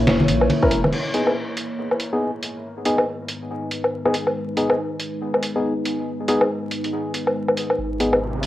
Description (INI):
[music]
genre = deep dubstep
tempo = 140 BPM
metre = 4/4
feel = swing 60% on 16ths, half-time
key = G# minor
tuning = A4 = 440 Hz
[part]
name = deep dark ambient pad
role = sustained chords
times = 0.0-8.5 s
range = G#3 to C#5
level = -26 LUFS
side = left 1 dB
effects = chorus, built-in reverb, vintage 12-bit sampler grit, cassette tape
[part]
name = dark detuned saw bass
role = bass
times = 0.0-0.9, 7.8-8.5 s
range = E1 to A#1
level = -25 LUFS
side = equal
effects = none
[part]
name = trip hop sampler-style drum kit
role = drums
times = 0.1-8.5 s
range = crash cymbal, hi-hat, ride cymbal, snare drum, woodblock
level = -22 LUFS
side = equal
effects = none
[part]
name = congas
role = percussion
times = 0.2-0.9 s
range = none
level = -24 LUFS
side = equal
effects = none
[part]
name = percussive organ stab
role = stabs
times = 0.6-8.2 s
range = B3 to A#4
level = -24 LUFS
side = left 1 dB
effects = chorus, cassette tape, dub echo
[part]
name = electronic kick drum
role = drums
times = 0.6-0.7 s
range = none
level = -22 LUFS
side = equal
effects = none
[part]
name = riser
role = sound effects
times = 8.2-8.5 s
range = none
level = -31 LUFS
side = right 1 dB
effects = none
[sound]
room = moderate studio reverb, RT60 0.6 s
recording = home recording on cassette, vinyl crackle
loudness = -20 LUFS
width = side -14 dB against mid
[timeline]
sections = 0.9-7.8 A section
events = filter sweep on ambient pad 0.9-7.8; riser 8.2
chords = 0.0 A#dim; 0.9 G#m